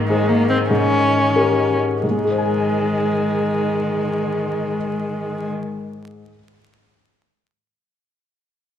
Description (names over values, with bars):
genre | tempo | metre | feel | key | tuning
quick classical-period movement for piano quartet | 85-100 BPM (dotted quarters) | 6/8 | straight | Ab major | A4 = 444 Hz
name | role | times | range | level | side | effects
warm cello | second line | 0.0-5.5 s | Eb3 | -27 LUFS | equal | none
clear baby grand piano | accompaniment | 0.0-6.4 s | Ab2 to Ab5 | -22 LUFS | left 2 dB | none
clear viola | accompaniment | 0.1-5.5 s | Ab3 to Db4 | -20 LUFS | left 1 dB | none
room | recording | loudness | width
wet recital hall reverb, RT60 1.4 s | minimal, uncompressed stereo recording, vinyl crackle | -17 LUFS | side -9 dB against mid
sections
0.0-2.0 A section; 2.0-4.7 B section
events
slowing down 0.0-2.0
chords
0.0 Ab; 0.7 Eb7/Ab; 2.0 Ab